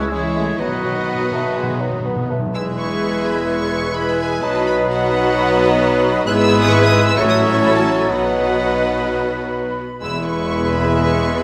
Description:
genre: quick classical-period movement for symphony orchestra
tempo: 128 BPM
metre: 4/4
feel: rubato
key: E major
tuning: A4 = 440 Hz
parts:
  - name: rich chamber violin section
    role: melody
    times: 0.0-11.4 s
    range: D#5 to F#6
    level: -28 LUFS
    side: equal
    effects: none
  - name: hollow small flute group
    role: second line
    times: 0.0-11.4 s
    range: B5 to A6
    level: -34 LUFS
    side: equal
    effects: none
  - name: rich chamber violin section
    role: second line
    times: 0.0-11.4 s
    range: C#4 to E5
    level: -30 LUFS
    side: equal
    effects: none
  - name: warm oboe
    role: second line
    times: 0.0-11.4 s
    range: F#4 to E5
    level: -28 LUFS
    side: equal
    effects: none
  - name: rich chamber viola section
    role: accompaniment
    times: 0.0-11.4 s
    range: D#3 to G#4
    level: -27 LUFS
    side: equal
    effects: none
  - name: mellow French horn section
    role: sustained chords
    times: 0.0-11.4 s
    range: F#3 to F#4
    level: -26 LUFS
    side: equal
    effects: none
  - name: warm trumpet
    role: stabs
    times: 0.0-11.4 s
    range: B4 to C#5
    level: -26 LUFS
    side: equal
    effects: none
  - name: rich chamber cello section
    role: bass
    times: 0.0-11.4 s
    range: E2 to G#3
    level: -28 LUFS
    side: equal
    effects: none
  - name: rich chamber double bass section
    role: bass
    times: 0.0-11.4 s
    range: E1 to C#2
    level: -28 LUFS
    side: equal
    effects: none
  - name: clear clarinet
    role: second line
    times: 0.1-11.4 s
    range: G#4 to C#5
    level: -29 LUFS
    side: equal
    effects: none
  - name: warm bassoon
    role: accompaniment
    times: 0.1-11.4 s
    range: F#3 to B3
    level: -26 LUFS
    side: equal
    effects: none
  - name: timpani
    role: percussion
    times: 0.6-2.5 s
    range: B2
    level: -29 LUFS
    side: equal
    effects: none
room: wet scoring stage reverb, RT60 1.9 s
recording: none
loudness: -17 LUFS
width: mono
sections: 0.0-2.5 A section; 2.5-11.4 B section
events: timpani fill 0.6-2.5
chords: 0.0 C#m; 0.6 B; 2.5 E; 4.4 B; 6.3 E/G#; 7.2 F#m7/A; 8.1 B; 10.0 E

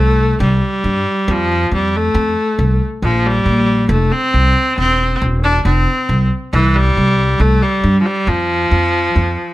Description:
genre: indie folk with a building arrangement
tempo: 137 BPM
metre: 4/4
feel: straight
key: F major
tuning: A4 = 435 Hz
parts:
  - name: bright viola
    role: melody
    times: 0.0-9.5 s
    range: E3 to D4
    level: -15 LUFS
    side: equal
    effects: none
  - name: upright bass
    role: bass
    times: 0.0-9.4 s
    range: E1 to G2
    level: -15 LUFS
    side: equal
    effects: none
room: little or no reverb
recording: none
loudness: -12 LUFS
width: side -16 dB against mid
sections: 0.0-9.5 A section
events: none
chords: 0.0 C5; 1.3 F; 3.0 Gm7/Bb; 3.9 F5; 4.8 C/E; 5.7 F5; 6.5 C5; 8.3 F5

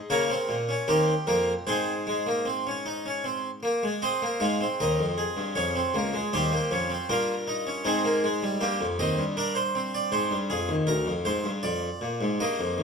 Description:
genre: classical, baroque-style 4-part fugue for harpsichord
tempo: 78 BPM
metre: 3/4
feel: straight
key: Ab major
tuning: A4 = 441 Hz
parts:
  - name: harpsichord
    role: solo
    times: 0.0-12.8 s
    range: Db2 to F5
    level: -24 LUFS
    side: equal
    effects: none
room: wet stone room reverb, RT60 1.2 s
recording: close, detailed microphones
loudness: -24 LUFS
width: side -5 dB against mid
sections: 0.0-4.0 A section; 4.0-12.8 B section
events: none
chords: 0.1 Bbm/Db; 0.9 Eb; 1.7 Ab; 5.6 Db/F; 6.3 Eb7; 7.9 Ab; 8.6 Eb; 10.1 Ab; 10.9 Bb7/D

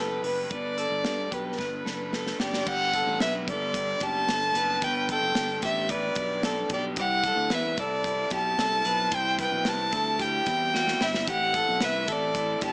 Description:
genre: jangly indie pop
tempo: 112 BPM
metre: 4/4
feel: straight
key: unclear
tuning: A4 = 437 Hz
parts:
  - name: warm violin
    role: melody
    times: 0.0-12.7 s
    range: B4 to A5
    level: -26 LUFS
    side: equal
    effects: none
  - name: raw garage guitar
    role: accompaniment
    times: 0.0-12.7 s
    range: G2 to A4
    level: -36 LUFS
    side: equal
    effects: overdrive
  - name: electric guitar through a small old amp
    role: arpeggios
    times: 0.0-12.7 s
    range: E4 to C5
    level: -32 LUFS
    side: equal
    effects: none
  - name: picked electric bass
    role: bass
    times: 0.0-12.7 s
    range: F#1 to G2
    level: -36 LUFS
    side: equal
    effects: none
  - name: modern studio drum kit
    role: drums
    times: 0.2-12.7 s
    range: crash cymbal, hi-hat, kick drum, snare drum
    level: -32 LUFS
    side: equal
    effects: gated reverb
room: light reverb, studio reverb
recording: small speaker sound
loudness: -24 LUFS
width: side -35 dB against mid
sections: 0.0-2.7 A section; 2.7-12.7 B section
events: drum fill 1.6-2.7, 10.7-11.3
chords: 0.0 Cmaj7 (rootless); 0.5 Gadd9; 7.0 C; 11.3 Am

